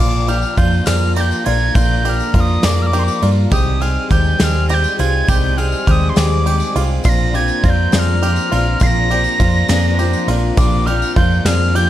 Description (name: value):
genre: indie folk with a building arrangement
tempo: 68 BPM (dotted quarters)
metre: 6/8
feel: straight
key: unclear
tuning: A4 = 439 Hz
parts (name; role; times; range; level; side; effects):
- breathy mellow tin whistle; melody; 0.0-11.9 s; C6 to C7; -20 LUFS; equal; slapback echo
- dark baby grand piano; accompaniment; 0.0-11.9 s; Bb1 to F5; -26 LUFS; right 2 dB; none
- picked twelve-string acoustic guitar; accompaniment; 0.0-11.9 s; Bb2 to G4; -23 LUFS; left 4 dB; none
- mellow brass ensemble; sustained chords; 0.0-11.9 s; G3 to Bb5; -30 LUFS; left 1 dB; none
- bluegrass banjo; arpeggios; 0.0-11.9 s; F4 to Ab4; -25 LUFS; right 5 dB; slapback echo
- hollow-body short-scale fingered electric bass; bass; 0.0-11.9 s; Bb1 to G2; -16 LUFS; equal; none
- soft brush drum kit; drums; 0.3-11.9 s; kick drum, ride cymbal, snare drum; -19 LUFS; equal; none
- tambourine; percussion; 0.3-11.8 s; none; -34 LUFS; left 11 dB; none
room: light reverb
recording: dark, warm production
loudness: -13 LUFS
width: side -13 dB against mid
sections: 0.0-11.9 A section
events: none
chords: 0.0 Bbadd9; 3.5 Abmaj7/C; 7.0 Bbadd9